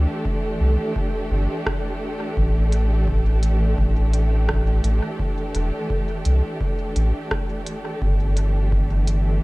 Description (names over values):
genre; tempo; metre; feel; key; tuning
ambient dub; 85 BPM; 4/4; straight; unclear; A4 = 436 Hz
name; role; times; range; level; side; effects
warm symphonic string section; sustained chords; 0.0-9.4 s; E3 to A4; -27 LUFS; equal; none
soft dub sub bass; bass; 0.0-9.4 s; E1 to C2; -18 LUFS; equal; none
electronic kick drum; drums; 0.3-8.9 s; none; -27 LUFS; equal; small room ambience
organic electronic drum kit; drums; 1.7-9.2 s; hi-hat, rim click; -30 LUFS; right 1 dB; small room ambience, dub echo
room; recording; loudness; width
digital ambience; none; -19 LUFS; side -22 dB against mid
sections
0.0-9.4 A section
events
none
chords
0.0 G5; 2.4 A7(no3); 8.0 G5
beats
0.25 0.96 1.66 | 2.37 3.08 3.78 4.49 | 5.19 5.90 6.61 7.31 | 8.02 8.72 9.43